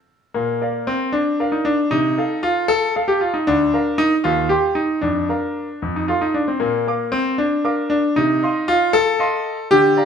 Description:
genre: classical-period piano sonatina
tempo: 77 BPM (dotted quarters)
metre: 6/8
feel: straight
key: Bb major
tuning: A4 = 442 Hz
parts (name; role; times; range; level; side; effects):
- clear concert grand piano; solo; 0.3-10.1 s; D2 to D6; -16 LUFS; equal; none
room: wet stone room reverb, RT60 1.1 s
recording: none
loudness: -17 LUFS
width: side -7 dB against mid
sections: 0.4-10.1 A section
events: none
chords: 0.4 Bb; 1.9 F7/C; 3.5 Bb/D; 4.2 Cm/Eb; 5.0 Bb/F; 5.8 F; 6.6 Bb; 8.2 F7/C

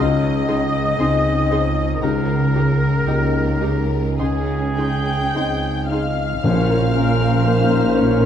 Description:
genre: cinematic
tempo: 50-60 BPM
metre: 4/4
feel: rubato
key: unclear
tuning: A4 = 439 Hz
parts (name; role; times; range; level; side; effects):
- muted symphonic violin section; melody; 0.0-8.3 s; Bb5 to G6; -30 LUFS; left 3 dB; none
- muted symphonic violin section; second line; 0.0-8.3 s; Ab4 to G5; -28 LUFS; left 3 dB; none
- warm oboe; second line; 0.0-8.3 s; Ab4 to Eb5; -26 LUFS; equal; none
- clear concert grand piano; accompaniment; 0.0-8.3 s; Bb1 to Eb5; -23 LUFS; left 3 dB; none
- muted chamber viola section; accompaniment; 0.0-8.3 s; Db4 to C5; -28 LUFS; right 1 dB; none
- concert harp; arpeggios; 0.0-8.3 s; Bb2 to Eb5; -26 LUFS; left 7 dB; none
- muted chamber cello section; bass; 0.0-8.3 s; Bb2 to Db3; -24 LUFS; right 3 dB; none
- muted studio double bass section; bass; 0.0-8.3 s; Bb1 to Db2; -23 LUFS; right 3 dB; none
- mellow large flute ensemble; second line; 4.8-8.1 s; F5 to G5; -29 LUFS; right 1 dB; none
- dark clarinet; second line; 6.4-8.3 s; Bb4; -28 LUFS; left 1 dB; none
- warm French horn section; sustained chords; 6.4-8.3 s; Db4 to Bb4; -22 LUFS; left 5 dB; none
- timpani; percussion; 6.4-7.9 s; Bb2; -24 LUFS; left 1 dB; none
room: moderate scoring stage reverb, RT60 1.8 s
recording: dark, warm production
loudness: -16 LUFS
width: side -9 dB against mid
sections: 0.0-6.4 A section; 6.4-8.3 B section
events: none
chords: 0.0 Ab/Db; 2.0 Eb7/Db; 4.2 Ab/Db; 6.4 Bbmadd9

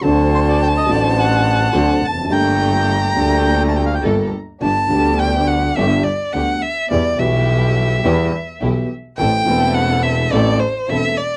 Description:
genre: tango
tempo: 105 BPM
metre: 4/4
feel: rubato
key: G minor, G major from 4.6 s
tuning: A4 = 440 Hz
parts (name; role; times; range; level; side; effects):
- rich violin; second line; 0.0-11.4 s; C5 to Bb5; -22 LUFS; equal; cassette tape
- dark concert grand piano; accompaniment; 0.0-11.1 s; E1 to A4; -23 LUFS; equal; cassette tape
- warm studio string section; stabs; 0.0-11.1 s; A3 to C5; -28 LUFS; equal; cassette tape
- bright double bass; bass; 0.0-11.1 s; E1 to E2; -21 LUFS; equal; none
- bandoneon; melody; 0.3-4.0 s; C5 to A5; -22 LUFS; equal; cassette tape
room: light reverb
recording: home recording on cassette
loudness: -17 LUFS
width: mono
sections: 0.0-4.6 A section; 4.6-11.4 B section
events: violin solo 4.6-11.4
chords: 0.0 D7; 2.3 Gmadd9; 4.6 G; 6.9 Em; 9.2 Am

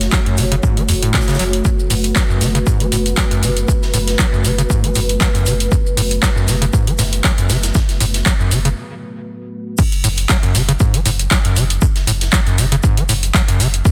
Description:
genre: acid house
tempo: 118 BPM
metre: 4/4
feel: swing 54% on 16ths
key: F# minor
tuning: A4 = 437 Hz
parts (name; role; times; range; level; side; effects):
- dark analog pad; sustained chords; 0.0-9.7 s; A3 to C#5; -26 LUFS; equal; chorus, sidechain pumping
- saturated sub bass; bass; 0.0-13.8 s; F#1; -22 LUFS; equal; sidechain pumping
- big rock drum kit; drums; 0.0-13.9 s; hi-hat, shaker, snare drum; -31 LUFS; equal; none
- booming analog drum machine; drums; 0.0-13.9 s; crash cymbal, handclaps, hi-hat, shaker; -22 LUFS; equal; none
- overdriven acid bass; riff; 0.1-13.9 s; E2 to F#3; -21 LUFS; equal; cassette tape, sidechain pumping, digital delay
- electronic kick drum; drums; 0.1-13.9 s; none; -19 LUFS; equal; overdrive
room: studio ambience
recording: dense, heavily limited modern master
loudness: -16 LUFS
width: mono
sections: 0.0-9.8 A section; 9.8-13.9 B section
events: break 8.8-9.8; drop 9.8-13.9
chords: 0.0 F#m; 9.8 N.C.

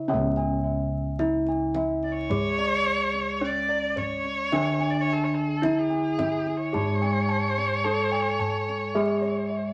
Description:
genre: Javanese gamelan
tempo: 54 BPM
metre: 4/4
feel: straight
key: C# pelog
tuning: A4 = 439 Hz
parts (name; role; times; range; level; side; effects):
- gamelan-type bronze metallophone; melody; 0.0-9.7 s; C#4 to A4-20c; -31 LUFS; equal; none
- gamelan-type bronze metallophone; accompaniment; 0.0-9.7 s; C#3 to G#3-30c; -34 LUFS; equal; none
- gamelan-type bossed gongs; bass; 0.0-9.7 s; C#2 to G#4-30c; -34 LUFS; equal; none
- gamelan-type bossed gongs; arpeggios; 0.1-9.7 s; C#5 to A5-20c; -34 LUFS; equal; none
- kendang; percussion; 0.4-9.4 s; none; -37 LUFS; equal; none
- rich erhu; second line; 2.0-9.7 s; G#4-36c to D5+27c; -30 LUFS; equal; none
room: moderate studio reverb, RT60 0.7 s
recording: vinyl crackle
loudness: -26 LUFS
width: mono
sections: 0.1-9.7 A section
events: none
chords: none

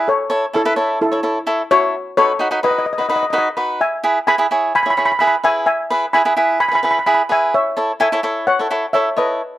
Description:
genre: calypso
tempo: 129 BPM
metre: 4/4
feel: straight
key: E major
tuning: A4 = 441 Hz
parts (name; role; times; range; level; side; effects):
- cavaquinho; accompaniment; 0.0-9.4 s; D#4 to C#5; -17 LUFS; right 1 dB; slapback echo
- steel pan; melody; 0.1-9.6 s; E4 to B5; -17 LUFS; left 1 dB; none
room: little or no reverb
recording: recorded outdoors, with no room sound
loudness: -14 LUFS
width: side -14 dB against mid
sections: 0.0-9.6 A section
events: none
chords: 0.1 A; 1.9 Badd9; 3.8 E; 7.5 A

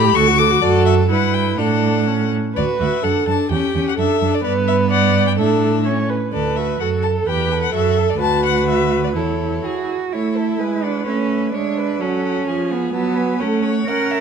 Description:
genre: quick classical-period movement for string quartet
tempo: 128 BPM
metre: 2/4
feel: straight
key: D major, A major from 8.2 s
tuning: A4 = 440 Hz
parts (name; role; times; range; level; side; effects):
- warm violin; melody; 0.0-14.2 s; C#5 to D6; -23 LUFS; left 12 dB; none
- rich violin; second line; 0.0-14.2 s; B3 to F#5; -23 LUFS; left 4 dB; none
- warm viola; accompaniment; 0.0-14.2 s; E#3 to D5; -21 LUFS; right 3 dB; none
- rich cello; bass; 0.0-14.2 s; D2 to A#4; -20 LUFS; right 5 dB; none
room: light reverb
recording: close, detailed microphones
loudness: -16 LUFS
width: side -6 dB against mid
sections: 0.0-2.6 A section; 2.6-10.1 B section; 10.1-14.2 C section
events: none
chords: 0.2 D; 0.6 D/F#; 1.1 Em/G; 1.6 D/A; 2.1 A; 2.6 D; 3.5 Em6; 4.0 D/F#; 4.4 G; 5.4 Asus4; 5.9 A; 6.3 D; 6.8 F#m; 7.3 A5/E; 7.7 F#m7; 8.2 Bm/D; 9.2 A/E; 9.6 E; 10.1 A; 10.6 E7/G#; 11.1 A; 12.0 F#m; 12.5 C#7/E#; 12.9 F#m

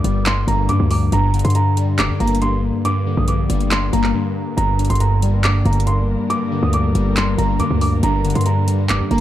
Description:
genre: hip hop, trap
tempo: 139 BPM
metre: 4/4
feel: half-time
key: G minor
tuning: A4 = 437 Hz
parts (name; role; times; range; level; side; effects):
- dark concert grand piano; melody; 0.0-9.2 s; Bb5 to Eb6; -24 LUFS; right 2 dB; low-pass filter
- glassy digital keys; accompaniment; 0.0-9.2 s; G2 to Bb3; -18 LUFS; left 1 dB; chorus, phaser, low-pass filter
- hard-hitting 808-style bass; bass; 0.0-9.2 s; F1 to G2; -20 LUFS; equal; none
- trap drum kit; drums; 0.0-9.2 s; handclaps, hi-hat; -24 LUFS; right 1 dB; overdrive
- muted chamber string section; sustained chords; 4.6-9.2 s; G3 to Bb4; -26 LUFS; equal; none
room: little or no reverb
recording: dark, warm production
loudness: -15 LUFS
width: side -12 dB against mid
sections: 0.0-9.2 A section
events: break 4.1-4.6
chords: 0.0 Gm

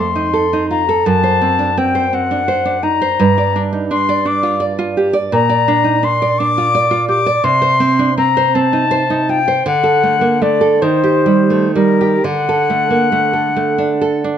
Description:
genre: romantic duo for flute and classical guitar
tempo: 40-59 BPM (dotted quarters)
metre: 6/8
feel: rubato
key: unclear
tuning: A4 = 440 Hz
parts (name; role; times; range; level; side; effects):
- concert flute; melody; 0.0-14.4 s; Bb4 to D6; -15 LUFS; left 6 dB; slapback echo
- nylon-string guitar; accompaniment; 0.0-14.4 s; F2 to D5; -15 LUFS; right 4 dB; none
room: light reverb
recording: close, detailed microphones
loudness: -12 LUFS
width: side -9 dB against mid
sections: 0.0-14.4 A section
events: none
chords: 0.0 F7; 1.1 D7/F#; 3.2 G7(no3); 5.3 Bb; 7.4 Cm; 9.7 D; 10.8 Eb; 12.2 D

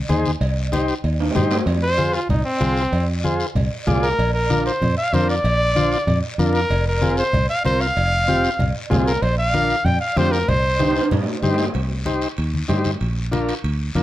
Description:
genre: latin, cumbia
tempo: 190 BPM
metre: 4/4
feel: straight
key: unclear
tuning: A4 = 440 Hz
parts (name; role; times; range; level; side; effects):
- fingered electric bass; bass; 0.0-14.0 s; F1 to G2; -21 LUFS; equal; none
- combo organ; accompaniment; 0.1-14.0 s; C4 to D5; -23 LUFS; left 1 dB; none
- congas; percussion; 0.1-14.0 s; none; -25 LUFS; left 1 dB; none
- cowbell and timbales; percussion; 0.1-14.0 s; none; -28 LUFS; right 3 dB; none
- guiro; percussion; 0.1-14.0 s; none; -35 LUFS; left 4 dB; none
- clear trumpet; melody; 1.8-11.1 s; C4 to G5; -20 LUFS; equal; none
room: light reverb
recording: close, detailed microphones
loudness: -17 LUFS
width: side -14 dB against mid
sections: 0.0-1.7 A section; 1.7-11.7 B section; 11.7-14.0 C section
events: drum fill 1.2-1.7, 10.8-11.7; trumpet solo 1.7-11.7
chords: 0.4 Cm; 1.7 Fm; 4.2 Bb; 6.7 Fm; 9.2 Bb; 10.5 Cm; 13.0 Bb

